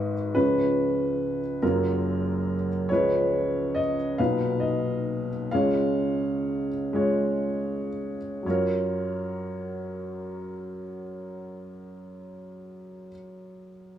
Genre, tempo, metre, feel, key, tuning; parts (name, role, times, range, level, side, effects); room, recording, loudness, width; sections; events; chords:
folk; 38-47 BPM (dotted quarters); 6/8; straight; F# major; A4 = 441 Hz
warm upright piano; melody; 0.0-14.0 s; F#1 to E#5; -25 LUFS; equal
moderate large studio reverb, RT60 1.1 s; small room ambience; -24 LUFS; side -10 dB against mid
0.0-8.4 A section; 8.4-11.6 B section
slowing down 2.9-8.4
0.3 C#7; 1.6 F#maj7; 2.9 C#7; 4.2 Bmaj7; 5.5 C#; 8.4 F#maj7